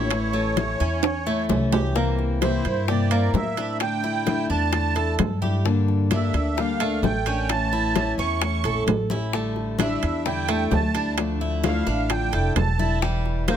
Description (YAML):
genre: latin, Cuban son and guajira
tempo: 130 BPM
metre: 4/4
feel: straight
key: unclear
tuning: A4 = 440 Hz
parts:
  - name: musette accordion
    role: melody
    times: 0.0-13.6 s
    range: C5 to C#6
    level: -28 LUFS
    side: right 5 dB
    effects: none
  - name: picked acoustic archtop guitar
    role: accompaniment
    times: 0.0-13.6 s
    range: C3 to A4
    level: -28 LUFS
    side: left 6 dB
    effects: none
  - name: Cuban tres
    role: arpeggios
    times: 0.0-13.6 s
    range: G3 to A4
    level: -29 LUFS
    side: right 1 dB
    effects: none
  - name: upright bass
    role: bass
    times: 0.0-13.6 s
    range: E1 to A2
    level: -25 LUFS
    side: right 1 dB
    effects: none
  - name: bongos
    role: percussion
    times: 0.1-13.6 s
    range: none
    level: -29 LUFS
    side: left 10 dB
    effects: none
  - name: congas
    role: percussion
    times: 0.1-13.6 s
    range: none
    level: -30 LUFS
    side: left 5 dB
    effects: none
  - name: timbales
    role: percussion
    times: 0.1-13.6 s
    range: none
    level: -28 LUFS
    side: right 8 dB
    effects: none
room: little or no reverb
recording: close, detailed microphones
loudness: -20 LUFS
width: side -9 dB against mid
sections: 0.0-2.0 A section; 2.0-13.6 B section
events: drum fill 1.0-2.0, 9.1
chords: 0.1 A; 2.0 C7; 3.8 Asus4; 5.7 Gmadd9; 7.5 A; 9.3 A7sus4; 11.2 Dmadd9; 13.0 Edim